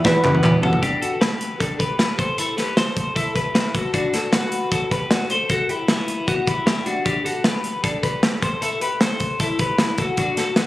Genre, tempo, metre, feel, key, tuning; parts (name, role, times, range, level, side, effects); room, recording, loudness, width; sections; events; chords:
jangly indie pop; 154 BPM; 4/4; straight; G major; A4 = 441 Hz
warm velvety synth lead; melody; 0.0-0.6 s; B4; -23 LUFS; right 1 dB; chorus, analog delay
fingerpicked steel-string acoustic guitar; accompaniment; 0.0-0.8 s; E2 to F#4; -21 LUFS; right 2 dB
twelve-string electric guitar; arpeggios; 0.0-10.7 s; B3 to C5; -22 LUFS; left 2 dB; wide subtle chorus, analog delay
chorused synth bass; bass; 0.0-0.8 s; F#1 to F#2; -23 LUFS; equal
modern studio drum kit; drums; 0.0-10.7 s; hi-hat, kick drum, snare drum, toms; -21 LUFS; equal
group handclap; percussion; 0.2-0.5 s; -30 LUFS; right 1 dB
moderate echo chamber reverb, RT60 1.8 s, small room ambience; recorded on a phone in the room, club reverb; -18 LUFS; side -16 dB against mid
0.8-10.7 A section
drum fill 0.0-0.8
0.0 Emadd9; 0.8 G; 2.2 Am; 3.9 D; 5.5 Emadd9; 7.1 G; 8.4 Am